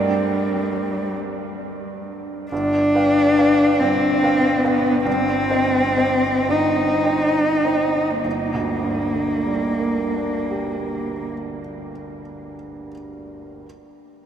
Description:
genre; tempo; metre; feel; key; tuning
classical, romantic duo for cello and grand piano; 30-48 BPM (dotted quarters); 6/8; rubato; G minor; A4 = 440 Hz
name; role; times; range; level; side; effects
warm cello; melody; 0.0-11.3 s; G3 to Eb4; -20 LUFS; left 1 dB; none
clear baby grand piano; accompaniment; 0.0-13.7 s; G1 to G5; -24 LUFS; right 2 dB; none
room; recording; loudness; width
wet huge ambient reverb, RT60 7.4 s; in a vast, echoing space; -17 LUFS; side -9 dB against mid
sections
0.0-2.5 A section; 2.5-8.2 B section; 8.2-11.4 C section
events
slowing down 1.2-8.2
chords
0.0 Gm; 2.5 G7; 5.1 Cm/G; 8.2 Gm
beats
1.17 | 2.51 3.80 | 5.06 6.48 | 8.24 9.86

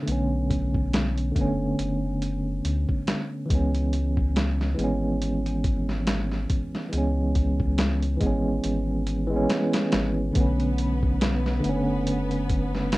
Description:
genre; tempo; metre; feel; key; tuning
trip hop; 70 BPM; 4/4; swing 57% on 16ths; B dorian; A4 = 438 Hz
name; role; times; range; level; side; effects
tine electric piano; accompaniment; 0.0-13.0 s; D3 to C#4; -26 LUFS; right 1 dB; tremolo, vintage 12-bit sampler grit, tape echo, plate reverb
soft dub sub bass; bass; 0.1-13.0 s; F#1 to D2; -27 LUFS; equal; none
trip hop sampler-style drum kit; drums; 0.1-13.0 s; hi-hat, kick drum, snare drum; -27 LUFS; equal; vintage 12-bit sampler grit
rich studio violin section; sustained chords; 10.4-13.0 s; B3 to B4; -35 LUFS; left 1 dB; plate reverb
room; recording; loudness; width
light reverb; rough home demo mix; -22 LUFS; side -19 dB against mid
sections
0.0-13.0 A section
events
none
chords
0.0 Bm9; 3.5 C#m7; 10.4 Bm9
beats
| 0.07 0.93 1.79 2.64 | 3.50 4.36 5.21 6.07 | 6.93 7.79 8.64 9.50 | 10.36 11.21 12.07 12.93

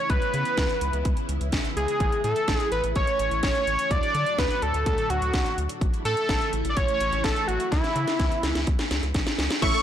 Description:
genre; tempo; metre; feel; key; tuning
synth-pop; 126 BPM; 4/4; straight; unclear; A4 = 440 Hz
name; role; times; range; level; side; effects
fat analog lead; melody; 0.0-9.8 s; E4 to C#6; -25 LUFS; equal; ping-pong delay
phased string machine; sustained chords; 0.0-9.6 s; A2 to F#4; -35 LUFS; left 1 dB; ensemble chorus, phaser
rubbery square bass; bass; 0.1-9.7 s; A1 to D3; -29 LUFS; equal; none
house drum kit; drums; 0.1-9.8 s; crash cymbal, hi-hat, kick drum, snare drum; -26 LUFS; equal; none
funky polysynth comp; accompaniment; 9.6-9.8 s; A3 to A4; -28 LUFS; right 1 dB; chorus
resonant blip pluck; arpeggios; 9.6-9.8 s; A4 to E5; -27 LUFS; right 3 dB; phaser
room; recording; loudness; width
light reverb, digital ambience; blown-out, overdriven recording, overdrive; -22 LUFS; side -10 dB against mid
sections
0.0-9.6 A section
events
drum fill 7.7-9.6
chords
0.1 C#m7; 2.0 A; 3.9 D; 5.8 A; 7.7 C#m7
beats
| 0.10 0.57 1.05 1.53 | 2.00 2.48 2.96 3.43 | 3.91 4.38 4.86 5.34 | 5.81 6.29 6.77 7.24 | 7.72 8.19 8.67 9.15 | 9.62

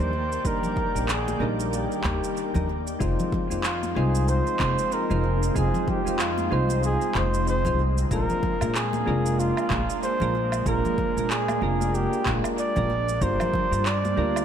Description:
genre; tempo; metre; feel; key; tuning
sunset chillout; 94 BPM; 4/4; swing 58% on 16ths; F dorian; A4 = 438 Hz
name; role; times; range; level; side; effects
mellow flugelhorn; melody; 0.0-14.4 s; F4 to D5; -28 LUFS; right 1 dB; dub echo
soft electric-piano-like synth keys; accompaniment; 0.0-14.4 s; G3 to C5; -30 LUFS; moving between left 5 dB and right 5 dB; chorus, auto-pan, low-pass filter, tape echo
shimmering ambient pad; sustained chords; 0.0-14.4 s; Eb3 to G5; -32 LUFS; equal; chorus, built-in reverb
upright bass; bass; 0.0-14.4 s; F1 to Bb2; -27 LUFS; equal; none
electronic shaker, handclaps and woodblock; drums; 0.0-14.4 s; none; -32 LUFS; right 2 dB; overdrive, studio reverb, analog delay
congas; percussion; 0.0-14.2 s; none; -35 LUFS; right 1 dB; none
electronic kick drum; drums; 0.4-13.7 s; none; -31 LUFS; equal; overdrive, studio reverb
room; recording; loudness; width
moderate plate reverb, RT60 1.8 s; echo-heavy mix; -22 LUFS; side -8 dB against mid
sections
0.0-14.4 A section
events
none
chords
0.0 Ebmaj7; 3.0 Fm7; 8.1 Bb7; 13.2 Gm7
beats
| 0.45 1.09 1.73 2.36 | 3.00 3.64 4.28 4.92 | 5.55 6.19 6.83 7.47 | 8.11 8.75 9.38 10.02 | 10.66 11.30 11.94 12.58 | 13.21 13.85

